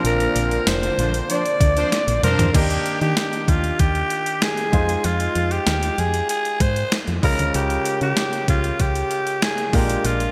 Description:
1980s-style pop; 96 BPM; 4/4; straight; Eb major; A4 = 440 Hz
raspy alto saxophone; melody; 0.0-10.3 s; F4 to D5; -25 LUFS; equal
bright concert grand piano; accompaniment; 0.0-10.3 s; Bb2 to C5; -30 LUFS; equal
phased analog pad; sustained chords; 0.0-2.5 s; D3 to C4; -35 LUFS; equal
solid FM bass; bass; 0.0-10.3 s; F1 to Eb3; -25 LUFS; equal
clean 12-bit digital drum machine; drums; 0.0-10.3 s; crash cymbal, hi-hat, kick drum, snare drum, tambourine, toms; -25 LUFS; equal; gated reverb
analog synth brass; stabs; 1.0-2.5 s; F3 to C5; -31 LUFS; equal; chorus, digital delay
moderate lush hall reverb, RT60 2.6 s; bright 1980s-style digital production; -20 LUFS; mono
0.0-2.5 A section; 2.5-10.3 B section
drum fill 1.9-2.5
0.0 Bbadd9; 2.5 Ebmaj7; 4.7 Fm7; 7.2 Db6; 9.7 Bb7

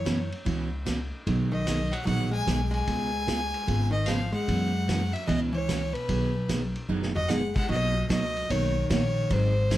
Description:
country, western swing; 149 BPM; 4/4; swing 66% on 8ths; B major; A4 = 438 Hz
rich fiddle; melody; 0.0-9.8 s; B4 to G#5; -31 LUFS; left 1 dB
hollow-body jazz guitar; second line; 0.0-9.8 s; G#2 to G#3; -32 LUFS; equal
upright bass; bass; 0.0-9.8 s; F#1 to F#2; -29 LUFS; left 1 dB
picked steel-string acoustic guitar; accompaniment; 0.1-9.8 s; B2 to G#4; -30 LUFS; right 3 dB
vintage drum kit; drums; 0.1-9.8 s; crash cymbal, hi-hat, kick drum, ride cymbal, snare drum, toms; -35 LUFS; left 1 dB
light reverb; -25 LUFS; side -14 dB against mid
0.0-7.7 A section; 7.7-9.8 A section
drum fill 6.9-7.3
0.0 F#7sus4; 1.3 B6; 2.9 C#7; 4.5 F#9sus4; 6.1 B6; 7.7 Bmaj7

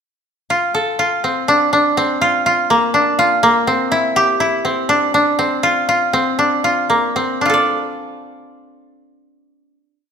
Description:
contemporary instrumental, chamber music in an uneven meter; 241 BPM (eighths); 7/8; uneven beats; D minor; A4 = 440 Hz
koto; solo; 0.5-10.1 s; Bb3 to D5; -14 LUFS; equal
moderate recital hall reverb, RT60 1.5 s; minimal, uncompressed stereo recording; -13 LUFS; side -7 dB against mid
0.5-7.4 A section; 7.4-10.1 final chord
slowing down 3.9-7.4
0.5 Dm7; 2.2 Bb; 3.9 Cadd9; 5.6 Dm7; 7.4 Dm

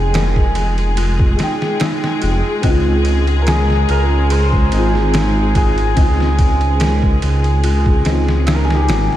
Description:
trip hop; 72 BPM; 4/4; swing 54% on 16ths; A4 = 440 Hz
hammered dulcimer; melody; 0.0-9.2 s; G4 to C5; -23 LUFS; equal; tape echo
felt-muted upright piano; accompaniment; 0.0-9.2 s; Ab3 to G5; -25 LUFS; equal; tremolo, tape echo
clear symphonic string section; sustained chords; 0.0-9.2 s; Ab3 to Ab4; -22 LUFS; left 2 dB; vintage 12-bit sampler grit
dark detuned synth bell; arpeggios; 0.0-9.2 s; Eb4 to Bb4; -26 LUFS; equal; chorus, tremolo, tape echo
dark detuned saw bass; bass; 0.0-9.1 s; F1 to Db2; -15 LUFS; equal; tube saturation
trip hop sampler-style drum kit; drums; 0.1-9.2 s; kick drum, ride cymbal, snare drum; -19 LUFS; equal; overdrive, studio reverb
moderate plate reverb, RT60 2.8 s; dreamy mix soaked in reverb; -13 LUFS; side -13 dB against mid
0.0-9.2 A section
0.0 Fm7; 2.6 Dbmaj7

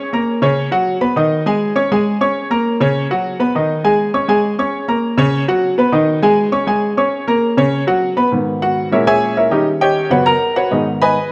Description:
latin; 201 BPM; 4/4; straight; G# minor; A4 = 439 Hz
clear grand piano; solo; 0.0-11.3 s; F#2 to C#6; -16 LUFS; equal
moderate plate reverb, RT60 3.0 s; -16 LUFS; mono
0.0-8.3 A section; 8.3-11.3 B section
grand piano solo 8.3-11.3
0.0 A#m; 0.6 F#sus4; 1.2 G#5; 1.8 G#sus4; 2.4 A#m; 2.9 F#sus4; 3.5 G#5; 4.1 G#sus4; 4.7 A#m; 5.3 F#sus4; 5.9 G#5; 6.5 G#sus4; 7.1 A#m; 7.7 F#sus4; 8.3 G#m; 8.9 A#m7b5; 9.5 D#7; 10.1 F#sus4; 10.7 G#m

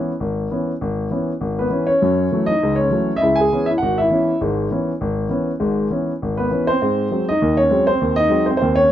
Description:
jazz; 200 BPM; 4/4; swing 61% on 8ths; C# minor; A4 = 440 Hz
warm concert grand piano; solo; 0.0-8.9 s; G#1 to G#5; -16 LUFS; equal
light reverb; band playing live in one room, nothing above 7.9 kHz; -16 LUFS; side -11 dB against mid
0.0-8.9 A section
0.0 C#m7; 2.0 F#m7; 3.2 C#m7; 6.8 G#7

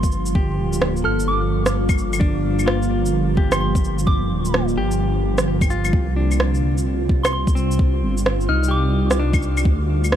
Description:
future garage; 129 BPM; 4/4; swing 63% on 16ths; G minor; A4 = 443 Hz
ethereal airy pad; sustained chords; 0.0-10.2 s; D3 to D5; -24 LUFS; right 1 dB; ensemble chorus, built-in reverb, sidechain pumping
dark detuned saw bass; bass; 0.0-10.2 s; D1 to D2; -21 LUFS; equal; tube saturation, sidechain pumping
electronic kick drum; drums; 0.0-9.8 s; -18 LUFS; equal; overdrive, studio reverb
electronic shaker, rim click and claves; drums; 0.0-10.2 s; -24 LUFS; right 1 dB; overdrive, studio reverb
clean electric guitar; accompaniment; 0.4-9.8 s; C4 to A4; -29 LUFS; left 3 dB; sidechain pumping, ping-pong delay
soft synth bell; melody; 1.0-9.2 s; C6 to F6; -28 LUFS; right 1 dB; chorus, phaser, dub echo
light reverb; vinyl crackle; -17 LUFS; side -10 dB against mid
0.0-10.2 A section
0.0 Gm7; 5.9 Csus4; 9.7 Dm7

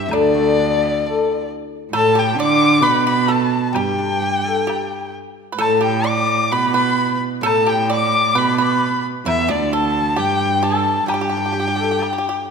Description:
chinese traditional, Chinese chamber ensemble; 66 BPM; 2/4; rubato; G gong mode; A4 = 442 Hz
clear erhu; melody; 0.0-12.4 s; D5 to D6; -21 LUFS; left 1 dB
mellow hollow large dizi; second line; 0.0-12.5 s; D5 to D6; -23 LUFS; left 8 dB
pipa; second line; 0.0-12.4 s; D4 to D5; -24 LUFS; right 5 dB
rich cello; second line; 0.0-12.4 s; D2 to D3; -21 LUFS; right 5 dB
guzheng; accompaniment; 0.0-12.5 s; A2 to D5; -23 LUFS; left 5 dB
woodblock; percussion; 0.1-12.2 s; -32 LUFS; left 3 dB
wet scoring stage reverb, RT60 1.7 s; -15 LUFS; side -6 dB against mid
0.0-12.5 A section

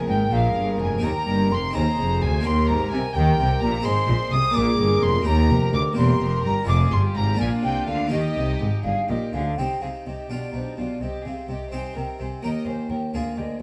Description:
classical, baroque-style concerto movement with solo episodes; 85 BPM (dotted quarters); 6/8; straight; Eb major, C minor from 9.6 s; A4 = 440 Hz
baroque flute; melody; 0.0-13.6 s; C5 to Eb6; -30 LUFS; equal
rich chamber violin section; second line; 0.0-13.4 s; Eb4 to Eb5; -35 LUFS; equal
dark chamber viola section; accompaniment; 0.0-13.6 s; Bb3 to Ab4; -35 LUFS; equal
harpsichord; accompaniment; 0.0-13.6 s; D2 to Ab4; -31 LUFS; equal
rich chamber cello section; bass; 0.0-13.6 s; D2 to Eb3; -29 LUFS; equal
rich chamber double bass section; bass; 0.0-13.5 s; E1 to Eb2; -28 LUFS; equal
rich chamber violin section; melody; 0.1-13.6 s; G4 to Eb6; -35 LUFS; equal
moderate stone room reverb, RT60 1.0 s; -23 LUFS; mono
0.0-9.6 A section; 9.6-13.6 B section
0.0 Bb7(no3); 1.0 Eb; 1.7 Ab; 2.4 Eb; 3.9 Ab; 4.6 Bb7; 5.3 Eb; 6.0 C7/E; 6.7 Fm; 7.4 Bb; 8.1 Eb; 9.6 Cm; 10.3 G7/B; 11.0 Cm; 12.4 Eb

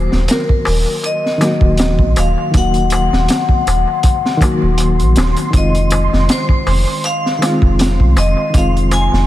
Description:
trip hop; 80 BPM; 4/4; swing 55% on 16ths; Eb dorian; A4 = 440 Hz
vibraphone with hard mallets; melody; 0.0-9.3 s; Bb4 to Ab5; -20 LUFS; left 2 dB; vintage 12-bit sampler grit, tape echo
reed electric piano; accompaniment; 0.0-9.3 s; Eb3 to Gb4; -18 LUFS; left 2 dB; tremolo, vintage 12-bit sampler grit, tape echo
soft dub sub bass; bass; 0.0-9.3 s; Eb1 to C2; -15 LUFS; equal
flickering grainy texture; texture; 1.0-9.3 s; C6; -27 LUFS; right 4 dB; built-in reverb
crunchy breakbeat drum kit; drums; 0.1-9.3 s; hi-hat, kick drum, snare drum; -16 LUFS; equal
darbuka; percussion; 0.1-9.3 s; -27 LUFS; left 1 dB
light reverb, studio ambience; -12 LUFS; side -14 dB against mid
0.0-9.3 A section
0.0 Ebm; 5.5 Fm7

